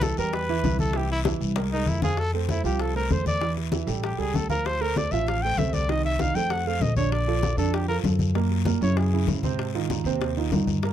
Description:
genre	Afro-Cuban jazz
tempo	194 BPM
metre	4/4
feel	straight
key	F major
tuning	A4 = 440 Hz
part	warm trumpet	melody	0.0-9.3 s	C4 to G5	-28 LUFS	left 1 dB	none
part	dark grand piano	accompaniment	0.0-10.9 s	Bb2 to F5	-29 LUFS	right 12 dB	none
part	upright bass	bass	0.0-10.9 s	A1 to Ab2	-26 LUFS	left 1 dB	none
part	bongos	percussion	0.0-10.9 s	none	-33 LUFS	left 9 dB	none
part	congas	percussion	0.0-10.9 s	none	-30 LUFS	left 2 dB	none
part	guiro	percussion	0.0-10.9 s	none	-40 LUFS	left 22 dB	none
room	little or no reverb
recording	dry, close 1970s-style studio recording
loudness	-22 LUFS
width	side -10 dB against mid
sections	0.0-2.2 A section; 2.2-10.9 A section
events	trumpet solo 0.0-10.9; drum fill 1.3-2.2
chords	0.0 Cmaj7; 1.6 Ab69/C; 2.2 Fmaj7; 3.4 A7sus4; 4.0 A7; 4.7 Dm7; 5.9 Cmadd11; 6.5 F; 7.1 Bbmaj7; 8.4 Gb9; 9.6 Ab6

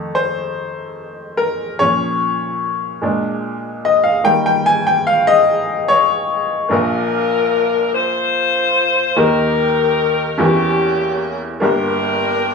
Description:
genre	gospel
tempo	49 BPM (dotted quarters)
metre	6/8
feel	straight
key	Bb major from 6.7 s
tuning	A4 = 440 Hz
part	bright baby grand piano	accompaniment	0.0-12.5 s	G1 to Ab5	-16 LUFS	left 1 dB	none
part	mellow saxophone section	melody	6.7-12.5 s	Bb3 to C5	-16 LUFS	left 3 dB	none
room	moderate large studio reverb, RT60 0.8 s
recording	small room reverb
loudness	-14 LUFS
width	side -5 dB against mid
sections	0.0-6.7 A section; 6.7-12.5 B section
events	grand piano solo 0.0-6.7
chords	0.0 F7; 1.8 Bbm; 3.0 Bb7; 4.3 Eb; 6.7 Bb; 9.2 Eb; 10.4 Edim7; 11.6 Gm

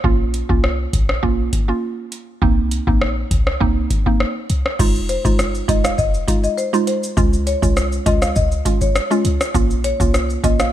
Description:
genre	dancehall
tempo	101 BPM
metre	4/4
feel	straight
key	F minor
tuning	A4 = 441 Hz
part	mallet-like synth pluck	accompaniment	0.0-10.7 s	Ab3 to F4	-21 LUFS	right 3 dB	chorus, sidechain pumping
part	clean 808-style bass	bass	0.0-10.7 s	F1 to Db2	-21 LUFS	equal	none
part	booming analog drum machine	drums	0.0-10.7 s	crash cymbal, hi-hat, kick drum, rim click, shaker	-19 LUFS	equal	none
part	marimba with medium mallets	melody	5.1-10.7 s	C5 to F5	-23 LUFS	left 4 dB	digital delay
room	little or no reverb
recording	none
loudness	-16 LUFS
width	side -12 dB against mid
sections	0.0-4.8 A section; 4.8-10.7 B section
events	none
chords	0.0 Bbm; 2.4 Cm7; 4.8 Fm7; 7.2 Db; 9.5 Bbm

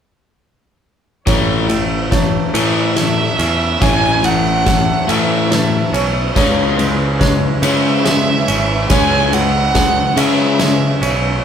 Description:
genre	post-rock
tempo	47 BPM (dotted quarters)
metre	6/8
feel	straight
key	A major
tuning	A4 = 444 Hz
part	muted studio string section	sustained chords	1.3-11.4 s	G#3 to C#5	-27 LUFS	right 3 dB	none
part	felt-muted upright piano	arpeggios	1.3-11.4 s	C#5 to E5	-26 LUFS	right 5 dB	none
part	twangy electric guitar	arpeggios	1.3-11.4 s	A2 to C#4	-25 LUFS	equal	none
part	overdriven semi-hollow guitar	riff	1.3-11.0 s	A2 to C#4	-18 LUFS	left 5 dB	none
part	modern bright picked electric bass	bass	1.3-11.4 s	G#1 to C#3	-20 LUFS	equal	none
part	oversized low-tuned drum kit	drums	1.3-11.2 s	crash cymbal, kick drum, ride cymbal, snare drum	-18 LUFS	right 1 dB	none
part	warm violin	melody	2.6-11.1 s	E5 to G#5	-18 LUFS	right 3 dB	none
room	wet large studio reverb, RT60 0.9 s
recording	band playing live in one room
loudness	-12 LUFS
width	side -8 dB against mid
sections	1.3-11.4 A section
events	build-up 1.3-11.4; drum fill 1.3-11.4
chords	1.3 Aadd9; 6.4 C#m7

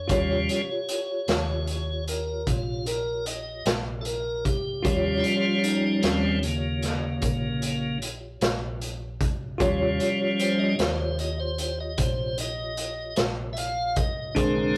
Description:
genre	slow blues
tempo	50 BPM (dotted quarters)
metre	12/8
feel	straight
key	unclear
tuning	A4 = 443 Hz
part	bell-like tine electric piano	accompaniment	0.0-14.8 s	D4 to Db5	-33 LUFS	equal	none
part	tonewheel organ	sustained chords	0.0-14.8 s	Db3 to F5	-30 LUFS	equal	slow rotary speaker
part	hollow-body short-scale fingered electric bass	bass	0.0-14.7 s	Bb1 to Eb2	-34 LUFS	equal	none
part	raw garage drum kit	drums	0.1-14.6 s	hi-hat, kick drum, snare drum	-31 LUFS	equal	none
room	moderate studio reverb, RT60 0.5 s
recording	rough rehearsal-room recording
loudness	-27 LUFS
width	mono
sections	0.0-14.8 A section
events	tonewheel organ solo 0.0-14.8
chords	0.1 Eb7

